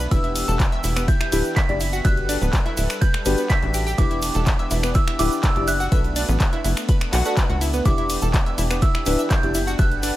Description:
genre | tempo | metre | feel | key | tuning
progressive house | 124 BPM | 4/4 | straight | E minor | A4 = 440 Hz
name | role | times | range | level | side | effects
lush unison pad | sustained chords | 0.0-10.2 s | E3 to F#5 | -32 LUFS | equal | chorus, sidechain pumping
analog pluck | arpeggios | 0.0-10.1 s | B3 to E5 | -29 LUFS | equal | chorus, sidechain pumping, dub echo
tight sequencer bass | bass | 0.0-10.1 s | D1 to C#2 | -24 LUFS | equal | tube saturation, sidechain pumping
deep house drum kit | drums | 0.0-10.1 s | finger snaps, handclaps, hi-hat, ride cymbal | -28 LUFS | equal | none
egg shaker | percussion | 0.0-10.1 s | none | -34 LUFS | left 2 dB | none
glassy synth bell | melody | 0.1-10.2 s | D6 to B6 | -28 LUFS | right 3 dB | chorus, tape echo
soft synth bell | second line | 0.1-10.2 s | D6 to B6 | -37 LUFS | right 2 dB | none
deep mellow chord stab | stabs | 0.1-10.2 s | D4 to E5 | -28 LUFS | left 2 dB | chorus, sidechain pumping
electronic kick drum | drums | 0.1-9.9 s | none | -19 LUFS | equal | none
room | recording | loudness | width
little or no reverb | none | -18 LUFS | side -15 dB against mid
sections
0.0-10.2 A section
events
none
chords
0.1 Em7; 5.9 Bm7; 7.9 Em7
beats
| 0.11 0.60 1.08 1.56 | 2.05 2.53 3.02 3.50 | 3.98 4.47 4.95 5.43 | 5.92 6.40 6.89 7.37 | 7.86 8.34 8.82 9.31 | 9.79

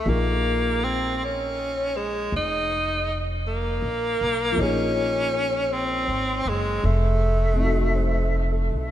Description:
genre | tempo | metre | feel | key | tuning
jazz ballad | 53 BPM | 4/4 | swing 66% on 8ths | Bb minor | A4 = 439 Hz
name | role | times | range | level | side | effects
bright tenor saxophone | melody | 0.0-8.7 s | Ab3 to Eb4 | -24 LUFS | equal | tape echo
dark baby grand piano | accompaniment | 0.0-8.9 s | F3 to C5 | -29 LUFS | left 3 dB | none
upright bass | bass | 0.1-8.9 s | F1 to Cb2 | -26 LUFS | equal | none
room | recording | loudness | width
moderate lush hall reverb, RT60 1.9 s, studio ambience | dreamy mix soaked in reverb | -21 LUFS | side -12 dB against mid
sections
0.0-8.9 A section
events
none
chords
0.1 Bbm7; 6.8 F7b9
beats
| 0.06 1.18 2.31 3.44 | 4.57 5.70 6.83 7.96

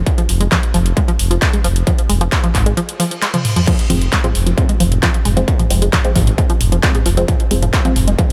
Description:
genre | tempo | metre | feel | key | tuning
driving peak-time techno | 133 BPM | 4/4 | straight | F minor | A4 = 439 Hz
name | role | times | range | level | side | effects
growling FM bass | bass | 0.0-8.1 s | F1 to Ab1 | -18 LUFS | equal | sidechain pumping
electronic kick drum | drums | 0.1-8.3 s | none | -18 LUFS | equal | distortion, overdrive, studio ambience
techno drum kit | drums | 0.1-8.3 s | crash cymbal, handclaps, hi-hat, toms | -22 LUFS | equal | overdrive, sidechain pumping on hats, studio ambience, sidechain pumping on toms, sidechain pumping on cymbals
tight sequenced synth | riff | 0.2-8.2 s | F3 to Ab3 | -23 LUFS | equal | chorus, phaser, sidechain pumping, digital delay
reverse cymbal | sound effects | 3.0-3.7 s | none | -32 LUFS | equal | none
filtered dub chord stab | stabs | 3.9-8.3 s | F3 to C4 | -25 LUFS | equal | phaser, sidechain pumping, digital delay
room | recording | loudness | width
digital ambience | none | -15 LUFS | mono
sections
0.0-8.3 A section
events
reverse cymbal 3.0-3.7; drum fill 3.3-3.7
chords
0.0 Fm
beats
| 0.07 0.52 0.97 1.42 | 1.87 2.32 2.77 3.22 | 3.67 4.13 4.58 5.03 | 5.48 5.93 6.38 6.83 | 7.28 7.74 8.19

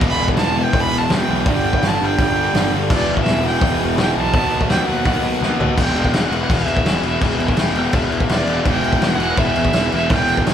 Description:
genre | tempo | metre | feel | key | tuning
punk rock | 166 BPM | 4/4 | straight | E minor | A4 = 440 Hz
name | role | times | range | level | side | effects
distorted electric guitar | riff | 0.0-5.8, 8.7-10.5 s | E2 to B3 | -25 LUFS | right 7 dB | distortion
fuzz guitar | riff | 0.0-10.5 s | E2 to B3 | -24 LUFS | right 1 dB | distortion
overdriven electric guitar | riff | 0.0-10.5 s | E2 to B3 | -23 LUFS | left 9 dB | none
fuzz picked electric bass | bass | 0.0-10.5 s | E1 to E2 | -23 LUFS | equal | overdrive
loose indie drum kit | drums | 0.0-10.5 s | crash cymbal, hi-hat, kick drum, snare drum, toms | -19 LUFS | equal | none
rich fiddle | melody | 0.1-10.5 s | D5 to B5 | -22 LUFS | right 2 dB | none
room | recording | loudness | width
light reverb | band playing live in one room | -15 LUFS | side -9 dB against mid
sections
0.0-5.8 A section; 5.8-10.5 B section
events
drum fill 5.4-5.8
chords
0.0 Em; 1.5 G5; 2.9 Em; 4.3 B/D#; 5.8 E5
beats
| 0.02 0.38 0.74 1.10 | 1.46 1.82 2.18 2.54 | 2.90 3.26 3.62 3.98 | 4.34 4.71 5.07 5.43 | 5.79 6.15 6.51 6.87 | 7.23 7.59 7.95 8.31 | 8.67 9.03 9.39 9.75 | 10.12 10.48

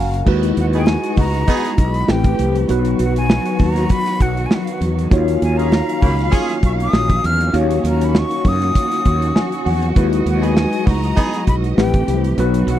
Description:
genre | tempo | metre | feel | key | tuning
polished 1980s jazz-funk pop | 99 BPM | 4/4 | swing 54% on 16ths | Eb minor | A4 = 440 Hz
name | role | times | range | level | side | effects
tine electric piano | accompaniment | 0.0-12.8 s | F#3 to Bb5 | -20 LUFS | left 2 dB | medium stereo tremolo, wide subtle chorus
warm studio string section | sustained chords | 0.0-12.8 s | Db3 to F5 | -26 LUFS | right 2 dB | none
mellow fretless electric bass | bass | 0.0-12.8 s | Gb1 to Gb2 | -18 LUFS | equal | none
modern studio drum kit | drums | 0.1-12.8 s | crash cymbal, hi-hat, kick drum, snare drum | -16 LUFS | equal | none
breathy jazz flute | melody | 0.6-12.8 s | F5 to F6 | -24 LUFS | left 2 dB | none
congas | percussion | 0.6-12.8 s | none | -32 LUFS | right 1 dB | none
mellow horn section | second line | 0.7-1.7, 5.6-6.6, 10.4-11.4 s | Bb3 to G#4 | -23 LUFS | right 2 dB | none
room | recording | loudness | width
little or no reverb | dry, close 1970s-style studio recording | -14 LUFS | side -12 dB against mid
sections
0.3-12.8 A section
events
tine electric piano fill 0.0, 9.1-10.0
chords
0.3 Emaj9/D#; 2.1 Am9; 2.7 B; 5.1 Ebm9; 10.0 Emaj9/D#; 11.8 Am9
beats
| 0.26 0.87 1.48 2.08 | 2.69 3.29 3.90 4.51 | 5.11 5.72 6.33 6.93 | 7.54 8.14 8.75 9.36 | 9.96 10.57 11.17 11.78 | 12.39

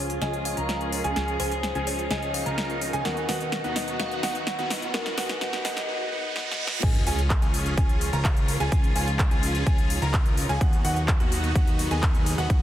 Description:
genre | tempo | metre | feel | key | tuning
EDM, festival progressive house | 127 BPM | 4/4 | straight | Db major | A4 = 440 Hz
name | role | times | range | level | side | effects
kalimba | melody | 0.0-5.9 s | Ab4 to Gb5 | -33 LUFS | left 2 dB | dub echo
rich chamber string section | sustained chords | 0.0-12.6 s | Ab2 to Ab4 | -34 LUFS | left 1 dB | sidechain pumping, low-pass filter
warm grand piano | arpeggios | 0.0-12.6 s | Gb5 to Bb5 | -34 LUFS | right 2 dB | sidechain pumping, low-pass filter, dub echo
big supersaw lead | riff | 0.0-12.6 s | Cb4 to Bb4 | -32 LUFS | right 1 dB | phaser, sidechain pumping, low-pass filter, dub echo
fat analog bass | bass | 0.0-12.6 s | Db2 to Eb2 | -30 LUFS | equal | sidechain pumping
riser, reverse cymbal and sub drop | sound effects | 2.4-8.7 s | none | -36 LUFS | right 1 dB | none
big-room dance drum kit | drums | 0.1-12.6 s | crash cymbal, handclaps, hi-hat, snare drum | -31 LUFS | equal | overdrive
electronic kick drum | drums | 6.8-12.6 s | none | -22 LUFS | equal | overdrive
room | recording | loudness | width
moderate lush hall reverb, RT60 1.9 s, digital ambience | dense, heavily limited modern master, high-pass filter | -22 LUFS | side -12 dB against mid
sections
0.0-6.8 A section; 6.8-12.6 B section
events
build-up 0.0-6.8; drum fill 0.0-5.9, 6.4-6.8; filter sweep on supersaw synth 0.0-6.8; filter sweep on grand piano 0.0-6.8; filter sweep 0.0-6.8; reverse cymbal 5.9-6.8; drop 6.8-12.6; impact 6.8-8.7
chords
0.0 Db; 3.1 Cb/Eb; 6.8 Db; 10.6 Cb/Eb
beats
0.22 0.69 | 1.16 1.63 2.11 2.58 | 3.05 3.52 4.00 4.47 | 4.94 5.41 5.89 6.36 | 6.83 7.30 7.78 8.25 | 8.72 9.19 9.66 10.14 | 10.61 11.08 11.55 12.03 | 12.50

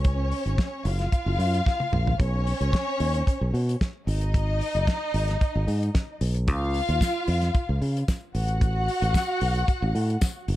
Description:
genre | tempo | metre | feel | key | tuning
disco | 112 BPM | 4/4 | straight | unclear | A4 = 438 Hz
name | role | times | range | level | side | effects
warm studio string section | second line | 0.0-10.4 s | C#4 to F#5 | -29 LUFS | left 1 dB | none
fingered electric bass | bass | 0.0-10.6 s | F#1 to C#3 | -24 LUFS | equal | none
damped 70s drum kit | drums | 0.0-10.6 s | hi-hat, kick drum, snare drum, toms | -26 LUFS | equal | none
tambourine | percussion | 7.0-10.3 s | none | -40 LUFS | left 8 dB | none
room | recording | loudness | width
small room ambience | dark, warm production | -22 LUFS | side -15 dB against mid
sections
0.0-2.2 A section; 2.2-10.6 B section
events
drum fill 1.7-2.2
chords
0.0 C#5; 0.9 F#maj7; 2.2 Badd9; 4.1 G#5; 6.5 C#; 8.3 N.C.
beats
| 0.05 0.59 1.13 1.66 | 2.20 2.73 3.27 3.81 | 4.34 4.88 5.41 5.95 | 6.48 7.01 7.55 8.08 | 8.62 9.15 9.68 10.22

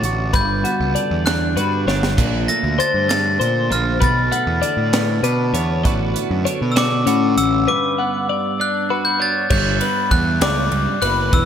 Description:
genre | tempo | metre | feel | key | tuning
math rock and midwest emo | 66 BPM (dotted quarters) | 6/8 | straight | unclear | A4 = 440 Hz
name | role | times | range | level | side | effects
glockenspiel with brass mallets | melody | 0.0-11.5 s | D6 to Bb6 | -21 LUFS | equal | slapback echo
twelve-string electric guitar | accompaniment | 0.0-11.5 s | E2 to F#4 | -24 LUFS | right 6 dB | phaser, slapback echo
twelve-string electric guitar | arpeggios | 0.0-11.5 s | C#4 to F#5 | -22 LUFS | left 8 dB | none
fuzz picked electric bass | bass | 0.0-11.5 s | E1 to B2 | -21 LUFS | equal | overdrive
crisp fusion drum kit | drums | 0.0-11.5 s | crash cymbal, hi-hat, kick drum, ride cymbal, snare drum | -22 LUFS | right 1 dB | none
room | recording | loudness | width
moderate lush hall reverb, RT60 2.5 s | big arena sound | -16 LUFS | side -8 dB against mid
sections
0.0-9.5 A section; 9.5-11.5 B section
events
drum fill 1.9-2.2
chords
0.3 Gmaj7; 2.2 Bbmaj9; 4.0 Bm7; 5.8 D6/A; 7.7 Gmaj7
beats
| 0.34 1.26 | 2.18 3.10 | 4.01 4.93 | 5.85 6.76 | 7.68 8.59 | 9.51 10.42 | 11.33

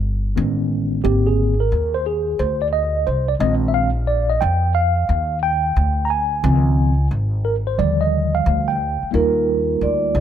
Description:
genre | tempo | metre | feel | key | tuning
hip hop, jazz-hop | 89 BPM | 4/4 | swing 66% on 16ths | Eb major | A4 = 440 Hz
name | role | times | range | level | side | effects
upright bass | bass | 0.0-10.2 s | G1 to F2 | -20 LUFS | equal | none
mellow tine electric piano | accompaniment | 0.4-10.2 s | D3 to Bb5 | -20 LUFS | right 1 dB | medium stereo tremolo
vibraphone with soft mallets | melody | 9.2-10.2 s | Bb4 to D5 | -19 LUFS | right 4 dB | none
room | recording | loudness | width
light reverb, small room ambience | none | -16 LUFS | side -9 dB against mid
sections
0.0-9.1 A section; 9.1-10.2 B section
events
tine electric piano solo 0.0-9.1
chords
0.4 Amaj9#11; 1.0 Abadd9(#11); 3.4 Bb7sus4; 6.4 Dbmaj9; 7.8 Ebmaj7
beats
0.37 | 1.04 1.72 2.39 3.06 | 3.74 4.41 5.08 5.76 | 6.43 7.11 7.78 8.46 | 9.13 9.80

